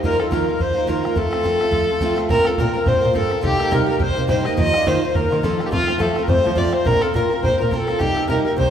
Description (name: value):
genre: celtic folk, Celtic reel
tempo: 211 BPM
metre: 4/4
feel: swing 57% on 8ths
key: F mixolydian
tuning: A4 = 440 Hz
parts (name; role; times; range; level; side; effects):
- rich fiddle; melody; 0.0-8.7 s; F4 to Eb5; -21 LUFS; equal; none
- accordion; second line; 0.0-8.7 s; F4 to Eb5; -25 LUFS; left 3 dB; light tremolo tuning
- picked plugged-in old ladder-braced acoustic guitar; accompaniment; 0.0-8.7 s; C3 to Bb4; -22 LUFS; right 1 dB; none
- bodhran; percussion; 0.0-8.7 s; none; -25 LUFS; right 1 dB; none
- bright double bass; bass; 2.3-8.7 s; Bb1 to F3; -24 LUFS; equal; none
room: wet concert hall reverb, RT60 1.7 s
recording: minimal, uncompressed stereo recording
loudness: -16 LUFS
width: side -8 dB against mid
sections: 0.0-2.3 A section; 2.3-8.7 A section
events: none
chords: 0.0 Ebsus2; 1.2 F; 2.3 Bbsus2; 3.4 Cm7; 4.6 Ebsus2; 5.7 F; 6.9 Bbsus2; 8.0 Cm7